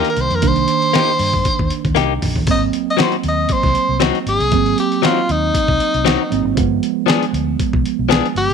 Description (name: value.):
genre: straight-eighth soul blues.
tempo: 117 BPM.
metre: 4/4.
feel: swing 54% on 16ths.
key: C minor.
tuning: A4 = 440 Hz.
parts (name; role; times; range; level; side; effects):
breathy tenor saxophone; melody; 0.0-8.5 s; Eb4 to Eb5; -18 LUFS; left 1 dB; none.
tine electric piano; accompaniment; 0.0-8.5 s; Eb3 to D4; -20 LUFS; right 15 dB; phaser.
direct-recorded clean electric guitar; stabs; 0.0-8.3 s; F3 to Ab4; -19 LUFS; left 14 dB; none.
dusty soul sampler-style drum kit; drums; 0.0-8.5 s; hi-hat, kick drum, snare drum, splash cymbal, toms; -20 LUFS; left 1 dB; none.
vintage muted fingered electric bass; bass; 0.2-8.5 s; G1 to G2; -21 LUFS; left 1 dB; none.
room: light reverb.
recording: 1960s-style stereo with parts hard left and right.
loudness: -14 LUFS.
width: side -6 dB against mid.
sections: 0.0-8.5 A section.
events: drum fill 2.0-2.5.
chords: 0.0 Cm7; 2.5 Ab7; 6.6 G7b9.